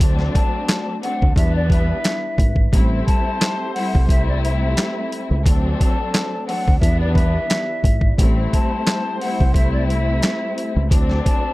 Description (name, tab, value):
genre	hip hop, boom-bap hip-hop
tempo	88 BPM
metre	4/4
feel	swing 54% on 16ths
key	A dorian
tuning	A4 = 440 Hz
part	warm studio string section	accompaniment	0.0-11.5 s	E3 to E4	-25 LUFS	left 2 dB	high-pass filter, low-pass filter
part	dark analog pad	sustained chords	0.0-11.5 s	G3 to E5	-33 LUFS	right 1 dB	chorus, high-pass filter, low-pass filter
part	warm horn section	stabs	0.0-11.5 s	F#3 to D5	-33 LUFS	equal	high-pass filter, low-pass filter, digital delay
part	deep dub fingered electric bass	bass	0.0-11.2 s	G#1 to E2	-19 LUFS	equal	none
part	boom bap sampler-style drum kit	drums	0.0-11.4 s	handclaps, hi-hat, kick drum, snare drum	-18 LUFS	equal	none
part	breathy hollow jazz flute	melody	0.3-11.5 s	D5 to A5	-26 LUFS	left 1 dB	high-pass filter, low-pass filter, digital delay
room	little or no reverb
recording	none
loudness	-16 LUFS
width	side -19 dB against mid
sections	0.0-11.5 A section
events	none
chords	0.0 D7; 1.4 Em7; 2.7 Am7; 5.5 D7; 6.8 Em7; 8.2 Am7; 10.9 D7